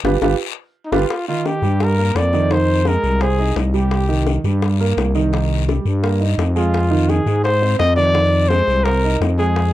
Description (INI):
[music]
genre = Afro-Cuban jazz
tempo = 170 BPM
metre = 4/4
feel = straight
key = unclear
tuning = A4 = 440 Hz
[part]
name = warm concert grand piano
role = accompaniment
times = 0.0-9.7 s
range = Eb3 to Eb5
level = -22 LUFS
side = right 6 dB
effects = none
[part]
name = growling FM bass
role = bass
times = 0.0-9.7 s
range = G1 to Ab2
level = -17 LUFS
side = left 1 dB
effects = none
[part]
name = bongos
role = percussion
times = 0.0-9.7 s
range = none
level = -25 LUFS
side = left 7 dB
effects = none
[part]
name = guiro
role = percussion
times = 0.1-9.7 s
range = none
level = -33 LUFS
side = left 24 dB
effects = none
[part]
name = mellow trumpet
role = melody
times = 0.8-4.4, 6.6-9.7 s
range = Eb4 to Eb5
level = -19 LUFS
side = left 1 dB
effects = none
[sound]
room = little or no reverb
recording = dry, close 1970s-style studio recording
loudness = -15 LUFS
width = side -14 dB against mid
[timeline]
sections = 0.0-1.1 A section; 1.1-9.7 B section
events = band accent 0.0-1.1; drum fill 0.0-1.1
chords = 0.0 G7; 1.1 F13sus4; 2.5 Fm7; 3.9 Cm7; 6.7 Fm7